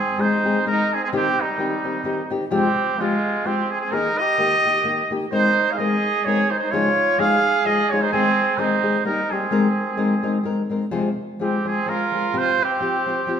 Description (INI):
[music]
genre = mexican folk, mariachi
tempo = 128 BPM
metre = 3/4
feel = swing 55% on 8ths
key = Ab major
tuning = A4 = 440 Hz
[part]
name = clear trumpet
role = melody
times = 0.0-13.4 s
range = Eb4 to F5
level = -21 LUFS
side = right 1 dB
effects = none
[part]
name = warm trumpet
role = second line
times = 0.0-13.4 s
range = G3 to Ab4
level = -25 LUFS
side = right 5 dB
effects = none
[part]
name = nylon-string guitar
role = accompaniment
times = 0.2-13.4 s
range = F2 to Bb4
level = -23 LUFS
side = left 3 dB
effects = none
[sound]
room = wet recital hall reverb, RT60 1.6 s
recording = minimal, uncompressed stereo recording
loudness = -18 LUFS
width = side -8 dB against mid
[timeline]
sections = 0.0-10.9 A section; 10.9-13.4 B section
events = none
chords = 0.0 Ab; 1.1 Cm; 2.5 Fmadd9; 3.9 Ebsus4; 4.4 Eb; 5.3 Abadd9; 6.7 Dbadd9; 8.1 Ab/Eb; 9.1 Eb; 9.5 Abadd9; 10.9 Fm; 12.3 Csus4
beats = 0.19 0.66 | 1.13 1.59 2.06 | 2.52 2.99 3.46 | 3.93 4.40 4.87 | 5.33 5.80 6.27 | 6.74 7.20 7.66 | 8.12 8.59 9.05 | 9.52 9.99 10.46 | 10.93 11.40 11.87 | 12.34 12.81 13.28